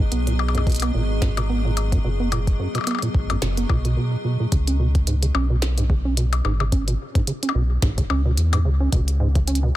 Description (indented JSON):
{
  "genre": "IDM",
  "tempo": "109 BPM",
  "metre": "4/4",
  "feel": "swing 56% on 16ths",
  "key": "unclear",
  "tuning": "A4 = 438 Hz",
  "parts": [
    { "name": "icy glass pad", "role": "sustained chords", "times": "0.0-4.0 s", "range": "F#3 to D#5", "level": "-31 LUFS", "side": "equal", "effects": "chorus, built-in reverb" },
    { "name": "deep acid bass", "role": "arpeggios", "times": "0.0-9.7 s", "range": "F#2 to C#4", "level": "-25 LUFS", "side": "right 2 dB", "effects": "ping-pong delay" },
    { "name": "round analog bass", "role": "bass", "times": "0.0-9.7 s", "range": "F#1 to E2", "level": "-21 LUFS", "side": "equal", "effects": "none" },
    { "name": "electronic kick drum", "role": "drums", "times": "0.0-9.5 s", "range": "none", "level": "-21 LUFS", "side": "equal", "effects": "overdrive" },
    { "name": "glitchy drum kit", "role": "drums", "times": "0.1-9.7 s", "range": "hi-hat, percussion blips, snare drum", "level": "-28 LUFS", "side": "left 5 dB", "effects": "soft clipping on snare" }
  ],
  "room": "little or no reverb",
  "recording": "dense, heavily limited modern master",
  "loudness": "-19 LUFS",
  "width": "side -14 dB against mid",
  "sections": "0.0-4.5 A section; 4.5-9.8 B section",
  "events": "none",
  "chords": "0.1 B6; 4.5 C#7(no3)"
}